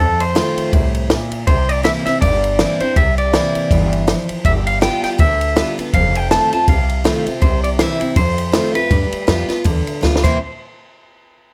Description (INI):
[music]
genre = rockabilly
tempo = 161 BPM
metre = 4/4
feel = swing 58% on 8ths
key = C major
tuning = A4 = 438 Hz
[part]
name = electric guitar through a small old amp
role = melody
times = 0.0-10.4 s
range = A4 to A5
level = -22 LUFS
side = equal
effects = tape echo
[part]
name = picked steel-string acoustic guitar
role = accompaniment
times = 0.0-10.4 s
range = F2 to F4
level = -23 LUFS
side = equal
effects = none
[part]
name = upright bass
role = bass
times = 0.0-10.4 s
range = F1 to G2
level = -22 LUFS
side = equal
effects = none
[part]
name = compact cocktail drum kit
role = drums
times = 0.2-10.3 s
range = crash cymbal, kick drum, ride cymbal, snare drum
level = -21 LUFS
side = equal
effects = none
[sound]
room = small room ambience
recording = none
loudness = -16 LUFS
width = mono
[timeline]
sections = 0.0-10.4 A section; 10.4-11.5 B section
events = drum fill 10.0-10.4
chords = 0.0 F7; 1.5 C7; 4.4 G7; 5.9 F7; 7.4 C7; 8.2 F7; 8.9 G7; 10.2 C7; 10.4 N.C.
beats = 0.36 0.73 1.10 | 1.47 1.85 2.22 2.59 | 2.96 3.33 3.71 4.08 | 4.45 4.82 5.19 5.56 | 5.94 6.31 6.68 7.05 | 7.42 7.80 8.17 8.54 | 8.91 9.28 9.66 10.03